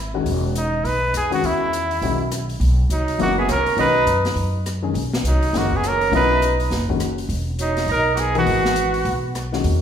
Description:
modal jazz; 205 BPM; 4/4; swing 61% on 8ths; B major; A4 = 441 Hz
warm trumpet; melody; 0.0-9.2 s; D#4 to B4; -21 LUFS; right 1 dB
upright bass; bass; 0.0-9.8 s; E1 to F#2; -22 LUFS; equal
warm baby grand piano; accompaniment; 0.1-9.8 s; C#3 to A#4; -25 LUFS; left 5 dB
open jazz drum kit; drums; 0.3-9.7 s; hi-hat, kick drum, rim click, snare drum; -30 LUFS; left 1 dB
warm tenor saxophone; second line; 2.9-9.2 s; F#3 to D#4; -25 LUFS; right 4 dB
wet recital hall reverb, RT60 1.6 s; recorded in a church or concert hall; -17 LUFS; side -8 dB against mid
0.0-9.8 A section
0.0 Emaj9; 2.6 Badd9; 7.3 Emaj9

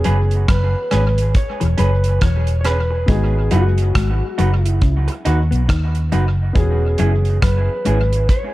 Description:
lovers rock reggae; 69 BPM; 4/4; swing 60% on 16ths; E major; A4 = 440 Hz
electric guitar through a small old amp; melody; 0.0-8.5 s; F#4 to C#5; -24 LUFS; equal; tape echo
clear concert grand piano; accompaniment; 0.0-8.5 s; B3 to G#4; -31 LUFS; left 1 dB
electric guitar through a small old amp; stabs; 0.0-8.0 s; C#4 to B4; -26 LUFS; right 3 dB; dub echo
vintage muted fingered electric bass; bass; 0.0-8.3 s; E1 to D#2; -16 LUFS; equal
damped 70s drum kit; drums; 0.0-8.5 s; hi-hat, kick drum, rim click; -19 LUFS; equal
mellow electric guitar; riff; 0.1-8.1 s; E3 to D#4; -26 LUFS; left 5 dB; spring reverb, dub echo
small room ambience; dark, warm production; -14 LUFS; side -17 dB against mid
0.0-8.5 A section
0.0 E6; 3.1 G#m7; 6.6 E6

